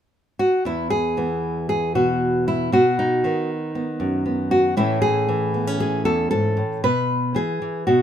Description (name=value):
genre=folk, solo fingerstyle acoustic guitar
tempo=116 BPM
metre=4/4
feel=rubato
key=E major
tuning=A4 = 440 Hz
part: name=nylon-string guitar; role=solo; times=0.4-8.0 s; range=E2 to B4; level=-19 LUFS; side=equal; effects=none
room=moderate small room ambience, RT60 0.5 s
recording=minimal, uncompressed stereo recording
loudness=-19 LUFS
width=side -9 dB against mid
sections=0.7-8.0 A section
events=none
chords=0.0 N.C.; 0.7 Eadd9; 2.7 B; 4.8 A; 6.8 Bsus4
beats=0.13 | 0.65 1.17 1.69 2.21 | 2.72 3.23 3.74 4.25 | 4.76 5.28 5.80 6.32 | 6.83 7.35 7.87